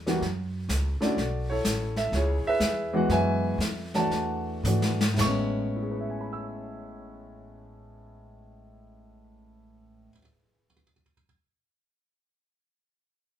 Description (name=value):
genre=jazz piano trio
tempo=108-127 BPM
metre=4/4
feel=swing 67% on 8ths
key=A major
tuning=A4 = 441 Hz
part: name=upright bass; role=bass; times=0.0-10.1 s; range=A1 to G#2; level=-31 LUFS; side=right 1 dB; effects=none
part: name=warm baby grand piano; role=melody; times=0.1-11.2 s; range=A2 to E6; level=-27 LUFS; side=equal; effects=none
part: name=jazz brush drum kit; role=drums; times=0.1-5.6 s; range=brushed snare drum, hi-hat, snare drum, splash cymbal, toms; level=-30 LUFS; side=left 1 dB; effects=none
room=moderate studio reverb, RT60 0.8 s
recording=band playing live in one room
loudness=-25 LUFS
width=side -10 dB against mid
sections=0.0-1.2 A section; 1.2-5.2 B section; 5.2-9.6 C section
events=slowing down 1.2-5.2; drum fill 4.6-5.2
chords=0.2 F#5; 1.2 B9sus4; 2.1 C#m7; 3.1 F#9sus4; 4.1 E9sus4; 5.2 Amaj9